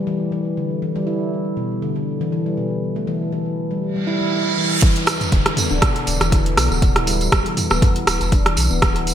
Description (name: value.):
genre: afro house.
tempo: 120 BPM.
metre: 4/4.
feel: swing 55% on 16ths.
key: E minor.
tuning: A4 = 438 Hz.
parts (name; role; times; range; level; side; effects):
handpan; arpeggios; 0.1-8.9 s; B2 to E4; -21 LUFS; left 1 dB; sidechain pumping, ping-pong delay.
reverse cymbal and downlifter; sound effects; 4.0-8.8 s; none; -25 LUFS; right 3 dB; none.
deep house drum kit; drums; 4.8-9.1 s; hi-hat, rim click, toms; -20 LUFS; right 1 dB; gated reverb.
electronic kick drum; drums; 4.8-8.9 s; none; -16 LUFS; equal; none.
tambourine; percussion; 4.8-9.1 s; none; -27 LUFS; right 5 dB; none.
warm sub bass; bass; 5.3-9.1 s; D1 to B1; -22 LUFS; equal; sidechain pumping.
room: moderate lush hall reverb, RT60 2.3 s.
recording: bright 1980s-style digital production.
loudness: -17 LUFS.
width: side -10 dB against mid.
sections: 0.0-4.8 A section; 4.8-9.1 B section.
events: reverse cymbal 4.0-4.8; drop 4.8-9.1.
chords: 0.0 N.C.; 4.8 E7(no3).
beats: 0.32 | 0.82 1.32 1.82 2.32 | 2.82 3.32 3.82 4.32 | 4.82 5.32 5.82 6.32 | 6.82 7.32 7.82 8.32 | 8.82.